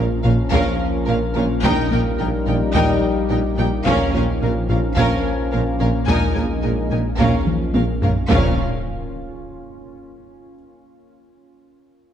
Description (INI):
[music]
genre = cinematic, hybrid orchestral and electronic film score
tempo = 108 BPM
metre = 4/4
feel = straight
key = Bb dorian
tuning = A4 = 440 Hz
[part]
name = warm symphonic violin section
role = melody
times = 0.0-8.6 s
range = F5 to Ab5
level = -28 LUFS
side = left 3 dB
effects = none
[part]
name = warm symphonic violin section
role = second line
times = 0.0-8.6 s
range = Bb4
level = -29 LUFS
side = left 3 dB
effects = none
[part]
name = warm symphonic viola section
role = accompaniment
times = 0.0-8.6 s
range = Db4 to Eb4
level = -28 LUFS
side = right 2 dB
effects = none
[part]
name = dark French horn section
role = sustained chords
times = 0.0-8.5 s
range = F3 to Eb4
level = -26 LUFS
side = left 4 dB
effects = none
[part]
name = deep dark ambient pad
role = sustained chords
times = 0.1-8.6 s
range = Bb3 to Bb4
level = -29 LUFS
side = equal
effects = chorus, built-in reverb
[part]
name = glassy wavetable pluck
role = arpeggios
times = 0.0-8.2 s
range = Eb3 to Bb4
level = -30 LUFS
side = equal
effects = none
[part]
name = mellow tuba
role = bass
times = 0.0-8.5 s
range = Bb1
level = -26 LUFS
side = right 3 dB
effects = none
[part]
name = rich studio double bass section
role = bass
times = 0.0-8.6 s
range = Bb1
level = -26 LUFS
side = right 3 dB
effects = none
[part]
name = saturated sub bass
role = bass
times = 0.0-8.6 s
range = Bb1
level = -25 LUFS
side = equal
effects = none
[part]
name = warm symphonic cello section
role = bass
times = 0.0-8.6 s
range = Bb2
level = -26 LUFS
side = right 2 dB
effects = none
[part]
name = warm concert grand piano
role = texture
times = 0.0-7.2 s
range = F6 to Ab6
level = -37 LUFS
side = left 5 dB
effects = tape echo
[part]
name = taiko ensemble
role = drums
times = 0.2-9.4 s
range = none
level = -24 LUFS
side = left 1 dB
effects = none
[part]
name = impact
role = sound effects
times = 8.3-10.5 s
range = none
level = -29 LUFS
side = equal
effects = none
[sound]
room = moderate scoring stage reverb, RT60 1.7 s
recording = dark, warm production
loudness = -16 LUFS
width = side -9 dB against mid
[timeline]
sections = 0.0-8.3 A section; 8.3-10.5 B section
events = drum fill 7.5-8.3; impact 8.3-10.5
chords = 0.0 Bbm; 1.6 Eb/Bb; 3.9 Bbm; 6.1 Absus2/Bb; 7.2 Bbm